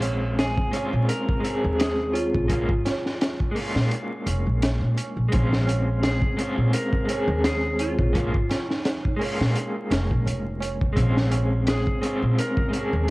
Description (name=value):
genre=trip hop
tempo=85 BPM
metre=4/4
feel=swing 55% on 16ths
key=Bb minor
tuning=A4 = 440 Hz
part: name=electric guitar through a small old amp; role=accompaniment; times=0.0-13.1 s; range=Ab3 to Ab4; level=-27 LUFS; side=equal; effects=tremolo, cassette tape
part: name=upright bass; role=bass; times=0.0-13.1 s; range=F1 to Bb2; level=-24 LUFS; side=equal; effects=none
part: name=crunchy breakbeat drum kit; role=drums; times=0.0-12.9 s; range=hi-hat, kick drum, snare drum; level=-26 LUFS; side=equal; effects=none
part: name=tabla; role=percussion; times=0.0-13.1 s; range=none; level=-36 LUFS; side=right 6 dB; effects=none
part: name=clean lap steel guitar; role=melody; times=0.4-13.1 s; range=F4 to Bb4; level=-30 LUFS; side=equal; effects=cassette tape, dub echo
room=studio reverb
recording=home recording on cassette, vinyl crackle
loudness=-21 LUFS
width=side -21 dB against mid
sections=0.0-13.1 A section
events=none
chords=0.0 Bbm9; 2.5 Bbm7; 5.3 Bbm9; 8.1 Bbm7; 11.0 Bbm9